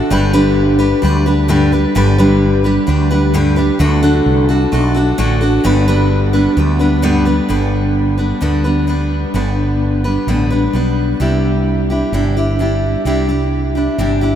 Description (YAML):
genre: honky-tonk and classic country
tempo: 130 BPM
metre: 4/4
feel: straight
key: G major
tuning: A4 = 439 Hz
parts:
  - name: picked steel-string acoustic guitar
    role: accompaniment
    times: 0.0-14.4 s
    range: G2 to B4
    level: -14 LUFS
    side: equal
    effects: none
  - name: mellow fretless electric bass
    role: bass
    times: 0.1-14.4 s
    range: G1 to D2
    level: -16 LUFS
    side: equal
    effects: none
room: moderate huge ambient reverb, RT60 8.4 s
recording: in a vast, echoing space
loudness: -12 LUFS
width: side -10 dB against mid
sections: 0.0-7.5 A section; 7.5-14.4 A section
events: none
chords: 0.1 G; 3.8 D; 5.6 G; 11.2 Cadd9